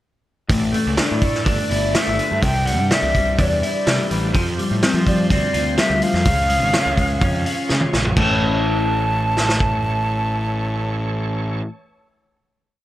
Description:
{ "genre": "psychedelic rock", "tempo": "125 BPM", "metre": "4/4", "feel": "straight", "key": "unclear", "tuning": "A4 = 439 Hz", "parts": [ { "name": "bright tonewheel organ", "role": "sustained chords", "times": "0.5-11.6 s", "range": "E3 to D5", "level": "-32 LUFS", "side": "right 3 dB", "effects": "slow rotary speaker, overdrive, chorus vibrato" }, { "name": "electric guitar through a small old amp", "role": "riff", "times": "0.5-11.7 s", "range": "A2 to F4", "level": "-22 LUFS", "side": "left 3 dB", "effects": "phaser" }, { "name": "fuzz picked electric bass", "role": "bass", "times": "0.5-11.6 s", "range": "G1 to F3", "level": "-22 LUFS", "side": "equal", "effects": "overdrive" }, { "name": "vintage drum kit", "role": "drums", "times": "0.5-9.7 s", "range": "crash cymbal, hi-hat, kick drum, snare drum, toms", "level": "-21 LUFS", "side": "equal", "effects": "none" }, { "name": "concert flute", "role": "melody", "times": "1.2-11.6 s", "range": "D5 to A5", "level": "-22 LUFS", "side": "right 1 dB", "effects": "slapback echo" } ], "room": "light reverb, small room reverb", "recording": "none", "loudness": "-16 LUFS", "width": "side -14 dB against mid", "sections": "0.5-8.2 verse; 8.2-12.0 final chord", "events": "drum fill 7.7-8.2", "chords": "0.5 Asus4; 2.4 Cadd9; 4.3 Fsus2; 6.3 C#; 8.2 A", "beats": "| 0.51 0.99 1.47 1.95 | 2.43 2.91 3.39 3.87 | 4.34 4.82 5.30 5.78 | 6.26 6.73 7.21 7.69 | 8.17 8.65 9.13 9.61 | 10.09 10.57 11.05 11.53" }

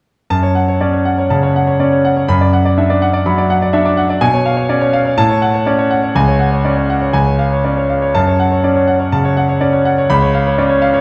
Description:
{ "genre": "classical, virtuoso piano study", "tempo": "123 BPM", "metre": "4/4", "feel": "rubato", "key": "F# minor", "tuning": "A4 = 440 Hz", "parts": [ { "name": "clear concert grand piano", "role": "solo", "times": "0.3-11.0 s", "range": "C#2 to B5", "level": "-14 LUFS", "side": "equal", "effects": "none" } ], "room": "moderate recital hall reverb, RT60 1.5 s", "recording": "dark, warm production", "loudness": "-14 LUFS", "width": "mono", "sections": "0.3-11.0 A section", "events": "none", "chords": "0.3 F#m; 2.3 Bm/F#; 4.2 C#7/B; 5.2 F#m/A; 6.2 C#sus4; 7.1 C#; 8.1 F#m; 10.1 C#7", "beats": "| 0.30 0.80 1.30 1.79 | 2.28 2.77 3.26 3.74 | 4.22 4.69 5.17 5.67 | 6.15 6.65 7.14 7.64 | 8.14 8.64 9.12 9.61 | 10.10 10.59" }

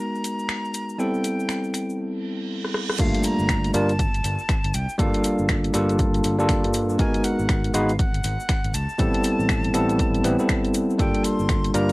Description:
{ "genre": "deep house", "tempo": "120 BPM", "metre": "4/4", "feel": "swing 61% on 16ths", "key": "G dorian", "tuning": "A4 = 440 Hz", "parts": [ { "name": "breathy bright jazz flute", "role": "melody", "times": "0.0-11.9 s", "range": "F5 to C6", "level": "-32 LUFS", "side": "left 1 dB", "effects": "cassette tape" }, { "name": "bell-like tine electric piano", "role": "stabs", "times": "0.0-11.9 s", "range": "G3 to Cb5", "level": "-23 LUFS", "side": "equal", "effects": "sidechain pumping, low-pass filter, analog delay" }, { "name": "house drum kit", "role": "drums", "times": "0.2-11.9 s", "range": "crash cymbal, finger snaps, hi-hat, rim click", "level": "-29 LUFS", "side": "left 1 dB", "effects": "cassette tape" }, { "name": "cabasa", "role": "percussion", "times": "0.2-11.9 s", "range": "none", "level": "-38 LUFS", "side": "left 2 dB", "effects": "none" }, { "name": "reverse cymbal and impact", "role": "sound effects", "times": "2.2-5.0 s", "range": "none", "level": "-35 LUFS", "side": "right 4 dB", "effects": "none" }, { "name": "fingered electric bass", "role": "bass", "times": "3.0-11.9 s", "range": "G1 to G2", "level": "-27 LUFS", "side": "equal", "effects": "sidechain pumping" }, { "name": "electronic kick drum", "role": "drums", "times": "3.0-11.6 s", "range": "none", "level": "-24 LUFS", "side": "equal", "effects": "cassette tape" } ], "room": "light reverb", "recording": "home recording on cassette", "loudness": "-20 LUFS", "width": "side -21 dB against mid", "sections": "0.0-3.0 A section; 3.0-11.9 B section", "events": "break 2.0-3.0; reverse cymbal 2.2-3.0; drum fill 2.6-3.0; drop 3.0-11.9; impact 3.0-5.0", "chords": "0.0 Abm9; 1.0 Am9; 3.0 Gm9; 7.0 Abm9; 9.0 Am9; 11.0 Gm9", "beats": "0.49 | 0.99 1.49 1.99 2.49 | 2.99 3.49 3.99 4.49 | 4.99 5.49 5.99 6.49 | 6.99 7.49 7.99 8.49 | 8.99 9.49 9.99 10.49 | 10.99 11.49" }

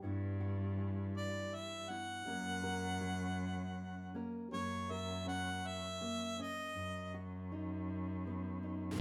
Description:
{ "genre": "folk", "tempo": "80 BPM", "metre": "3/4", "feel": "straight", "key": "unclear", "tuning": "A4 = 440 Hz", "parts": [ { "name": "nylon-string guitar", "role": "accompaniment", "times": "0.0-9.0 s", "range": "F#2 to A#4", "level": "-48 LUFS", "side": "equal", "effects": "none" }, { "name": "rich cello", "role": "bass", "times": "0.0-9.0 s", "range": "F#2 to G2", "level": "-44 LUFS", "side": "equal", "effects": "none" }, { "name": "clear harmonica", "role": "melody", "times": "1.2-7.1 s", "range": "C#5 to F#5", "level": "-44 LUFS", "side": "equal", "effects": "none" } ], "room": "moderate large studio reverb, RT60 1.2 s", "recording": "band playing live in one room", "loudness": "-41 LUFS", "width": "mono", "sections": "0.0-4.5 A section; 4.5-9.0 B section", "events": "none", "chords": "0.0 Emadd9/G; 2.3 F#; 6.8 B/F#", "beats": "| 0.02 0.76 1.51 | 2.25 3.00 3.76 | 4.51 5.26 6.01 | 6.76 7.50 8.25 | 9.00" }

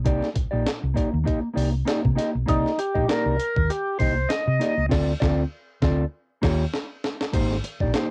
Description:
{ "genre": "funk", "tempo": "99 BPM", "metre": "4/4", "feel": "swing 56% on 16ths", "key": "C dorian", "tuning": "A4 = 441 Hz", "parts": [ { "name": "mellow electric guitar", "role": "accompaniment", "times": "0.0-8.1 s", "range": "Bb3 to Eb5", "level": "-28 LUFS", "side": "equal", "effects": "tube saturation, cassette tape" }, { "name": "hollow-body short-scale fingered electric bass", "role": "bass", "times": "0.0-8.0 s", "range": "Ab1 to C3", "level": "-27 LUFS", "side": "equal", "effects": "none" }, { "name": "breakbeat sampler-style drum kit", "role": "drums", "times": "0.1-8.1 s", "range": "crash cymbal, hi-hat, kick drum, snare drum", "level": "-28 LUFS", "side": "equal", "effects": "cassette tape" }, { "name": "percussive tonewheel organ", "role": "melody", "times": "2.5-4.9 s", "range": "Eb4 to Eb5", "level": "-27 LUFS", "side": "equal", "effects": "slow rotary speaker, cassette tape" } ], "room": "little or no reverb", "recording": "home recording on cassette", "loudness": "-24 LUFS", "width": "mono", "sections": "0.0-7.3 A section", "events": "band accent 4.9-7.3; drum fill 6.1-7.3", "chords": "0.0 Cm9; 4.9 Dm7; 6.1 Eb9; 7.3 Abmaj9", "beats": "| 0.06 0.67 1.27 1.88 | 2.49 3.09 3.70 4.30 | 4.91 5.52 6.12 6.73 | 7.33 7.94" }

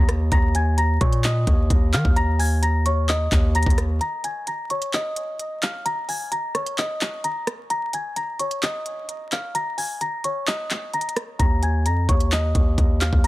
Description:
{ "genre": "hip hop, trap", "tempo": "130 BPM", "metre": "4/4", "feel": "half-time", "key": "unclear", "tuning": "A4 = 440 Hz", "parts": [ { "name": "small celesta", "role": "melody", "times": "0.0-13.3 s", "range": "Db5 to Bb6", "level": "-26 LUFS", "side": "left 1 dB", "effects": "low-pass filter, tape echo" }, { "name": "distorted 808-style bass", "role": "bass", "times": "0.0-4.0, 11.4-13.3 s", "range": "Eb2 to Eb3", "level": "-20 LUFS", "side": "equal", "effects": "distortion" }, { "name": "trap drum kit", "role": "drums", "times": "0.1-13.3 s", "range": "handclaps, hi-hat, kick drum, rim click", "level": "-22 LUFS", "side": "equal", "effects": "none" } ], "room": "little or no reverb", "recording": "dense, heavily limited modern master, vinyl crackle", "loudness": "-20 LUFS", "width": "side -18 dB against mid", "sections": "0.0-4.0 A section; 4.0-13.3 B section", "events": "break 4.0-11.4; filter sweep on celesta 4.0-13.3", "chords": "0.0 Eb5", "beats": "| 0.32 0.78 1.24 1.70 | 2.16 2.63 3.09 3.55 | 4.01 4.47 4.93 5.39 | 5.86 6.32 6.78 7.24 | 7.70 8.16 8.63 9.09 | 9.55 10.01 10.47 10.93 | 11.39 11.86 12.32 12.78 | 13.24" }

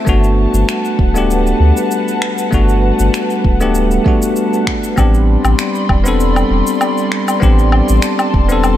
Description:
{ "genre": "sunset chillout", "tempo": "98 BPM", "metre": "4/4", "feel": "swing 54% on 16ths", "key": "G major", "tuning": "A4 = 440 Hz", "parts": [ { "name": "bell-like tine electric piano", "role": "accompaniment", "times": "0.0-8.8 s", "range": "A3 to A4", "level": "-16 LUFS", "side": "left 1 dB", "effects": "auto-pan, digital delay" }, { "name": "airy breathy pad", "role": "sustained chords", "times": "0.0-8.8 s", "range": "G3 to C6", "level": "-19 LUFS", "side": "left 1 dB", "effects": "chorus" }, { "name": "warm sub bass", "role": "bass", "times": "0.1-8.8 s", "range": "D1 to D2", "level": "-14 LUFS", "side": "equal", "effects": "none" }, { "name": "electronic kick drum", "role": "drums", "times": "0.1-8.5 s", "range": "none", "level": "-15 LUFS", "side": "equal", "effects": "none" }, { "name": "electronic shaker, finger snaps and woodblock", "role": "drums", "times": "0.1-8.8 s", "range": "none", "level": "-22 LUFS", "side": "left 1 dB", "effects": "none" } ], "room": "light reverb", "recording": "dark, warm production", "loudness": "-11 LUFS", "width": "side -12 dB against mid", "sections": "0.0-8.8 A section", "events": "none", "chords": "0.1 Gmaj9; 5.0 Am11", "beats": "| 0.07 0.69 1.30 1.91 | 2.52 3.13 3.75 4.36 | 4.97 5.58 6.20 6.81 | 7.42 8.03 8.64" }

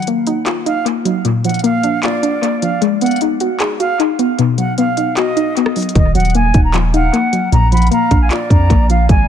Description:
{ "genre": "hip hop, trap", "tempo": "153 BPM", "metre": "4/4", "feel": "half-time", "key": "unclear", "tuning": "A4 = 441 Hz", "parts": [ { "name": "silver concert flute", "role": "second line", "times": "0.0-9.1 s", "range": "D5 to Gb5", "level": "-22 LUFS", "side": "right 3 dB", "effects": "dub echo" }, { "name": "soft round pluck", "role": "accompaniment", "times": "0.0-9.3 s", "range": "Bb2 to Ab4", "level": "-16 LUFS", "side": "left 2 dB", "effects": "chorus, low-pass filter, dub echo" }, { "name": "trap drum kit", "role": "drums", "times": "0.0-9.2 s", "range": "handclaps, hi-hat, kick drum, rim click", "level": "-18 LUFS", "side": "equal", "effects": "vintage 12-bit sampler grit, dub echo" }, { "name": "mellow concert flute", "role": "melody", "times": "6.0-9.3 s", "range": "Eb5 to Cb6", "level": "-20 LUFS", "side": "equal", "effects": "low-pass filter, dub echo" }, { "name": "long sustained 808-style bass", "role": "bass", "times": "6.0-9.3 s", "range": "Eb1 to F2", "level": "-13 LUFS", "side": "equal", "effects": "none" } ], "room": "light reverb", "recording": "echo-heavy mix", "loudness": "-12 LUFS", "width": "side -9 dB against mid", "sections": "0.0-9.3 A section", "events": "break 0.0-6.0", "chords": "0.0 Ebmadd9; 1.2 Bb; 2.8 Abm7; 4.4 B; 6.0 Ebmadd9; 7.5 Bb", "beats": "0.07 0.47 0.86 | 1.25 1.64 2.03 2.43 | 2.82 3.21 3.60 3.99 | 4.39 4.78 5.17 5.56 | 5.96 6.35 6.74 7.13 | 7.52 7.92 8.31 8.70 | 9.09" }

